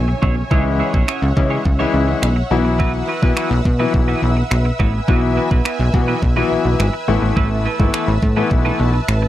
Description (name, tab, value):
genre	dance-pop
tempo	105 BPM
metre	4/4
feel	straight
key	unclear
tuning	A4 = 435 Hz
part	supersaw pad	sustained chords	0.0-9.3 s	B4 to E6	-26 LUFS	right 2 dB	sidechain pumping
part	plucky analog bass	bass	0.0-9.3 s	G#1 to C#3	-18 LUFS	equal	sidechain pumping
part	downlifter	sound effects	0.0-2.8 s	none	-38 LUFS	right 1 dB	none
part	twelve-string electric guitar	riff	0.1-9.3 s	A3 to C#5	-24 LUFS	right 6 dB	wide subtle chorus
part	pop drum kit	drums	0.2-9.2 s	finger snaps, kick drum	-17 LUFS	equal	overdrive
part	bright concert grand piano	accompaniment	0.5-8.9 s	E3 to F#4	-20 LUFS	left 5 dB	sidechain pumping
room	little or no reverb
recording	dry, close 1970s-style studio recording, lossy compression artefacts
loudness	-14 LUFS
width	side -13 dB against mid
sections	0.0-9.3 A section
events	none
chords	0.0 C#m; 2.5 Bsus4; 7.1 Asus2